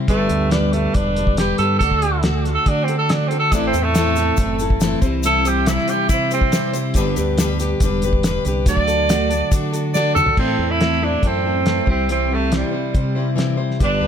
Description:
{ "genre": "folk rock and heartland rock", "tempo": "140 BPM", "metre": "4/4", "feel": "straight", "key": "unclear", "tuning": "A4 = 442 Hz", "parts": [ { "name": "picked plugged-in steel-string acoustic guitar", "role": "accompaniment", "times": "0.0-14.1 s", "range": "A2 to C5", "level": "-24 LUFS", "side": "left 4 dB", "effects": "none" }, { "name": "deep dub fingered electric bass", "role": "bass", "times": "0.0-14.1 s", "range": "E1 to D3", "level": "-23 LUFS", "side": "equal", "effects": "none" }, { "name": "warm tenor saxophone", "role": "melody", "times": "0.1-14.1 s", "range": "G3 to D5", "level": "-20 LUFS", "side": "right 2 dB", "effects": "tape echo" }, { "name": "clean electric guitar", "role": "riff", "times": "0.1-14.1 s", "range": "G2 to A4", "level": "-25 LUFS", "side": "right 3 dB", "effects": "none" }, { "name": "cloth-damped thuddy drum kit", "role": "drums", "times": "0.1-13.9 s", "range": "crash cymbal, hi-hat, kick drum, snare drum, toms", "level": "-20 LUFS", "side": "equal", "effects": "none" }, { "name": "tube shaker", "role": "percussion", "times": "3.5-10.3 s", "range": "none", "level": "-33 LUFS", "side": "left 10 dB", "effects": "none" } ], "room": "light reverb", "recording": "none", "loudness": "-16 LUFS", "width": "side -8 dB against mid", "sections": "0.0-10.4 A section; 10.4-14.1 B section", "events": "tenor saxophone solo 0.0-10.4; drum fill 10.0-10.4", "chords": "0.1 G; 1.8 D; 3.5 Am; 5.0 C; 7.0 G; 8.7 D; 10.4 Am; 11.9 C" }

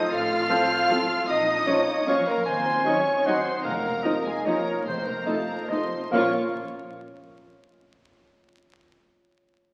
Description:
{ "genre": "classical", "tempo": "138-164 BPM", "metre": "3/4", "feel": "rubato", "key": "Bb minor", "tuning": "A4 = 440 Hz", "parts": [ { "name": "clear studio violin section", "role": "melody", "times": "0.0-6.3 s", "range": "Ab5 to F6", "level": "-35 LUFS", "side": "equal", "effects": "none" }, { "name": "bright clarinet", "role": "second line", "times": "0.0-6.3 s", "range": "A4 to Ab5", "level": "-32 LUFS", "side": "equal", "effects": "none" }, { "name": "clear studio violin section", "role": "second line", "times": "0.0-6.3 s", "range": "Ab4 to F5", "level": "-39 LUFS", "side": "equal", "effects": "none" }, { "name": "large flute ensemble", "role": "second line", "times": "0.0-6.3 s", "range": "Ab4 to F5", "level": "-30 LUFS", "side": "equal", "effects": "none" }, { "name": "concert harp", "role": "arpeggios", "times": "0.0-7.4 s", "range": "A2 to C6", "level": "-40 LUFS", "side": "equal", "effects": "none" }, { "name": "rich studio cello section", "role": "bass", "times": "0.0-6.3 s", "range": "Ab3 to F4", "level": "-36 LUFS", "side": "equal", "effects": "none" }, { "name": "rich studio double bass section", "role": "bass", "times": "0.1-6.3 s", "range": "A1 to F2", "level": "-46 LUFS", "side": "equal", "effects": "none" }, { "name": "rich studio viola section", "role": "accompaniment", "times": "0.5-6.4 s", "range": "F3 to F4", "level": "-34 LUFS", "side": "equal", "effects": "none" }, { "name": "dark French horn section", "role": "sustained chords", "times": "0.5-6.3 s", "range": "A3 to F4", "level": "-39 LUFS", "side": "equal", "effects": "none" }, { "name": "dark trombone section", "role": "sustained chords", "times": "0.5-6.3 s", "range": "A2 to Gb3", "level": "-40 LUFS", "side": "equal", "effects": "none" }, { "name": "dark trumpet", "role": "stabs", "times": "0.5-6.3 s", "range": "A4 to F5", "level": "-33 LUFS", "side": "equal", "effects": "none" }, { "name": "timpani", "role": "percussion", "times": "3.6-6.3 s", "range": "F2 to Bb2", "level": "-42 LUFS", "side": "equal", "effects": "none" } ], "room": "wet scoring stage reverb, RT60 1.8 s", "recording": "very old 78 rpm record, vinyl crackle", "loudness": "-24 LUFS", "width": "mono", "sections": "0.0-6.1 A section; 6.1-7.4 B section", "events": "none", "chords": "0.0 F/A; 1.3 Bbm; 2.5 Cdim/Eb; 3.6 F7sus4; 4.9 F7; 6.1 Bbm" }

